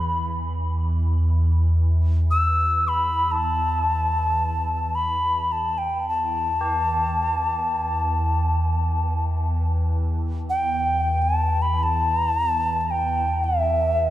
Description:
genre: world meditative, free-time meditation music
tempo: free time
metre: none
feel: none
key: E minor pentatonic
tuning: A4 = 440 Hz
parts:
  - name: bright reedy alto ocarina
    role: melody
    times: 0.0-14.1 s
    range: E5 to E6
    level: -22 LUFS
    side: left 1 dB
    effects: tape echo
  - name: ethereal airy pad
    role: drone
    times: 0.0-14.1 s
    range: E2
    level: -23 LUFS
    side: equal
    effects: ensemble chorus, built-in reverb, phaser
  - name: tubular bells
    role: texture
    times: 6.6-14.1 s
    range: G4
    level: -36 LUFS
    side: right 1 dB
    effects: none
room: moderate plate reverb, RT60 3.1 s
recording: echo-heavy mix, cassette tape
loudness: -20 LUFS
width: side -14 dB against mid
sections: 0.0-14.1 A section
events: none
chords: none

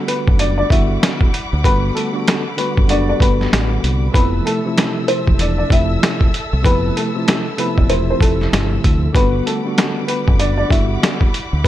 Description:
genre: hip hop, boom-bap hip-hop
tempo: 96 BPM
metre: 4/4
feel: swing 61% on 16ths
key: G major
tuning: A4 = 440 Hz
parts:
  - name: dark upright piano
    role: melody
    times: 0.0-11.7 s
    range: A3 to E5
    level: -21 LUFS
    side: left 2 dB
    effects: high-pass filter, low-pass filter, ping-pong delay
  - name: tine electric piano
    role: accompaniment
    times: 0.0-11.7 s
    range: C3 to F#4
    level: -22 LUFS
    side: equal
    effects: fast stereo tremolo, cassette tape, high-pass filter, low-pass filter
  - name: warm studio string section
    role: sustained chords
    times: 0.0-11.7 s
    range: G3 to E6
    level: -29 LUFS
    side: left 2 dB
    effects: high-pass filter, low-pass filter
  - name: trip hop sampler-style drum kit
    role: drums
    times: 0.1-11.7 s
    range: hi-hat, kick drum, snare drum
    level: -16 LUFS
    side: equal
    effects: none
  - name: deep dub fingered electric bass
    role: bass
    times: 0.3-11.7 s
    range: E1 to D2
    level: -19 LUFS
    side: equal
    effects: none
room: digital ambience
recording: none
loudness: -14 LUFS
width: side -13 dB against mid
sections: 0.0-11.7 A section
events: none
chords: 0.0 Gmaj7; 4.1 Fmaj7; 9.1 Gmaj7

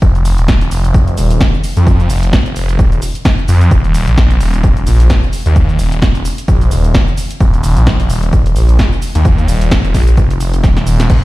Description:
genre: bass house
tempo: 130 BPM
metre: 4/4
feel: swing 57% on 16ths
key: unclear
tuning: A4 = 440 Hz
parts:
  - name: phased detuned saw bass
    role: bass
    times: 0.0-11.2 s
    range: Eb1 to F2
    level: -12 LUFS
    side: equal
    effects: phaser, sidechain pumping
  - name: electronic kick drum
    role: drums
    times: 0.0-11.2 s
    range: none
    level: -12 LUFS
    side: equal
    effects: none
  - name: house drum kit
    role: drums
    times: 0.0-11.2 s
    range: cabasa, crash cymbal, hi-hat, snare drum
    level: -20 LUFS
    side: equal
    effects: none
room: little or no reverb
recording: played on a big sound system in a bare room, stone room reverb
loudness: -9 LUFS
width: side -18 dB against mid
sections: 0.0-11.2 A section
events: drum fill 10.6-11.1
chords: none

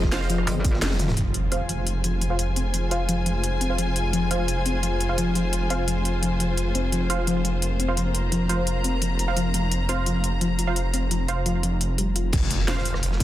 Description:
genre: dark technical drum and bass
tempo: 172 BPM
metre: 4/4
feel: straight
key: F minor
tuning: A4 = 440 Hz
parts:
  - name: dark analog pad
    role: sustained chords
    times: 0.0-12.3 s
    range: F4 to Eb5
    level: -36 LUFS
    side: equal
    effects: chorus, sidechain pumping
  - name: snarling distorted saw bass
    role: bass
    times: 0.0-13.2 s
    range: F1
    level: -25 LUFS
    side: equal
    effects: distortion, tube saturation, sidechain pumping
  - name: crunchy breakbeat drum kit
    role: drums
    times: 0.0-1.2, 12.3-13.2 s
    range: hi-hat, snare drum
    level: -37 LUFS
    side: equal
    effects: high-pass filter on hats, high-pass filter on snare, high-pass filter on room
  - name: electronic kick drum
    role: drums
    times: 0.0-0.7, 12.3-13.2 s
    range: none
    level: -22 LUFS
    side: equal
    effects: none
  - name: warm studio string section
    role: texture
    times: 0.0-12.3 s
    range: F4 to Bb5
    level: -31 LUFS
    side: left 3 dB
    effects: sidechain pumping
  - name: filtered dub chord stab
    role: stabs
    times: 0.1-13.2 s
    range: F4 to F5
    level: -31 LUFS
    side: right 3 dB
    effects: chorus, digital delay
  - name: drum and bass drum kit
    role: drums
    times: 0.1-13.2 s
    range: crash cymbal, hi-hat, rim click, snare drum, toms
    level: -28 LUFS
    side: left 1 dB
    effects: none
  - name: soft round pluck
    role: arpeggios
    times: 0.3-12.2 s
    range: F3 to F4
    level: -29 LUFS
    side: left 3 dB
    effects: chorus, sidechain pumping, digital delay
  - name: metallic wobble bass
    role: bass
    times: 0.5-0.8 s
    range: G1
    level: -26 LUFS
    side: right 1 dB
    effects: distortion, chorus
  - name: impact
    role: sound effects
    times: 1.2-2.6, 12.3-13.2 s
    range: none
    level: -29 LUFS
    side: right 1 dB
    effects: none
room: light reverb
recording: dense, heavily limited modern master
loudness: -21 LUFS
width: side -14 dB against mid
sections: 0.0-1.2 A section; 1.2-12.3 B section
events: drop 0.0-1.2; band accent 0.8; drum fill 0.9; impact 1.2-2.6, 12.3-13.2; filter sweep on synth pluck 1.2-12.3; filter sweep on synth stab 1.2-12.3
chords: 0.0 Fm; 12.3 F5

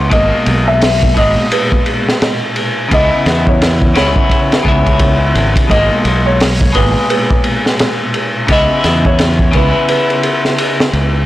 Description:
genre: trip hop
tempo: 86 BPM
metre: 4/4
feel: swing 60% on 16ths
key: G# minor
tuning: A4 = 441 Hz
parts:
  - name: electric guitar at the edge of break-up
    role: accompaniment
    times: 0.0-11.3 s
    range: A#2 to E4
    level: -16 LUFS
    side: left 1 dB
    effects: harmonic tremolo, tape echo
  - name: growling fingered electric bass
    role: bass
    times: 0.0-11.2 s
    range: G#1 to E2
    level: -14 LUFS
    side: equal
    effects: overdrive
  - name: felt-muted upright piano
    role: melody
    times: 0.1-10.9 s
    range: B4 to E5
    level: -18 LUFS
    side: equal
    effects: tape echo
  - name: crunchy breakbeat drum kit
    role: drums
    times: 0.1-11.1 s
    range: hi-hat, kick drum, ride cymbal, snare drum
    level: -14 LUFS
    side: equal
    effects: vintage 12-bit sampler grit
room: light reverb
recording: blown-out, overdriven recording, overdrive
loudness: -10 LUFS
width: side -15 dB against mid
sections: 0.0-11.3 A section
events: none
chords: 0.1 G#madd9; 2.9 C#m7; 5.7 G#madd9; 8.5 C#m7

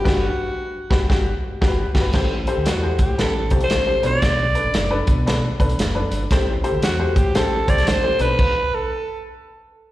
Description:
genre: uptempo 1960s-style soul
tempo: 115 BPM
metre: 4/4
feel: swing 64% on 8ths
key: A dorian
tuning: A4 = 441 Hz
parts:
  - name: growling alto saxophone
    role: melody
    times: 0.0-9.3 s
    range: F#4 to D5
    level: -22 LUFS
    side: right 1 dB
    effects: slapback echo
  - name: warm upright piano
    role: accompaniment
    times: 0.0-8.4 s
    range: G2 to C5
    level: -24 LUFS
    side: left 3 dB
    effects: slapback echo
  - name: fingered electric bass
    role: bass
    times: 0.1-8.3 s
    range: F#1 to B2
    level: -23 LUFS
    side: equal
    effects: none
  - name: vintage drum kit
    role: drums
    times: 0.1-8.5 s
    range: crash cymbal, hi-hat, kick drum, snare drum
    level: -20 LUFS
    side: equal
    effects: none
room: light reverb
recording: live gig heard through the venue's PA, recital hall reverb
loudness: -17 LUFS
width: side -15 dB against mid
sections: 0.0-2.1 A section; 2.1-9.9 B section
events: band accent 0.1-2.1; stop 8.4-9.9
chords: 0.0 Gmaj7; 2.1 Am7; 4.0 Bm7; 6.3 Am7; 8.1 Bm7

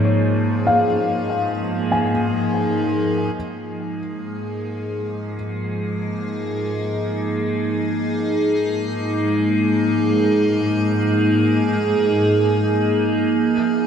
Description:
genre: ambient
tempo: free time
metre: none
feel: none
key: unclear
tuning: A4 = 444 Hz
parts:
  - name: evolving wavetable pad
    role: sustained chords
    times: 0.0-13.9 s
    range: Ab2 to Ab4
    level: -19 LUFS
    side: right 1 dB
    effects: phaser, built-in reverb, shimmer reverb
  - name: felt-muted upright piano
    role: arpeggios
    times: 0.0-5.4 s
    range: Db5 to Ab5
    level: -23 LUFS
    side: left 2 dB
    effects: ping-pong delay, shimmer reverb
  - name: muted studio cello section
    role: bass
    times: 3.3-13.3 s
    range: Ab2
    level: -24 LUFS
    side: equal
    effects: none
room: wet lush hall reverb, RT60 2.8 s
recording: dark, warm production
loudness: -18 LUFS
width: side -7 dB against mid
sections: 0.0-3.3 A section; 3.3-13.3 A section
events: fade-in on ambient pad 3.3-13.3; fade-in on cello section 3.3-13.3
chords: 0.0 Db69/Ab; 3.3 Bb7sus4/Ab; 13.3 Absus2

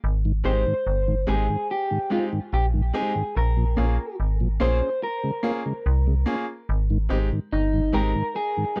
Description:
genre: reggae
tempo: 72 BPM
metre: 4/4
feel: straight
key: Ab major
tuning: A4 = 440 Hz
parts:
  - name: metallic FM bass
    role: bass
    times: 0.0-8.1 s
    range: G1 to C2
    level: -25 LUFS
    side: equal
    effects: none
  - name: mellow tonewheel organ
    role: accompaniment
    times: 0.3-8.8 s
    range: Ab2 to Ab4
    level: -29 LUFS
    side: equal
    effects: overdrive, chorus vibrato, slow rotary speaker
  - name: bright concert grand piano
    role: stabs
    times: 0.4-8.8 s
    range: Ab3 to Ab4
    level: -32 LUFS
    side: equal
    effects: none
  - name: electric guitar through a small old amp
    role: melody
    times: 0.5-8.8 s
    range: Eb4 to C5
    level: -29 LUFS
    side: equal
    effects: dub echo
room: little or no reverb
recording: dry, close 1970s-style studio recording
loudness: -24 LUFS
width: mono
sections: 0.0-8.8 A section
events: none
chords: 0.0 Abmaj7; 3.4 Bbm7; 5.0 Db6; 6.7 Abmaj7

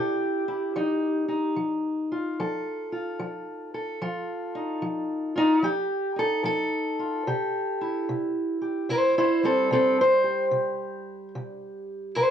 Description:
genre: acoustic country blues, solo or duo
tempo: 74 BPM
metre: 4/4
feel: swing 65% on 8ths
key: unclear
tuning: A4 = 440 Hz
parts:
  - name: fingerpicked steel-string acoustic guitar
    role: solo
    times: 0.0-12.3 s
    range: C3 to C5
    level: -24 LUFS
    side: equal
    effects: none
room: moderate studio reverb, RT60 0.7 s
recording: worn, warbling old tape, cassette tape, warbly pitch drift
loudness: -24 LUFS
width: side -9 dB against mid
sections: 0.0-12.3 A section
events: steel-string acoustic guitar solo 0.0-12.3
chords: 0.0 C; 0.8 F7; 7.3 C

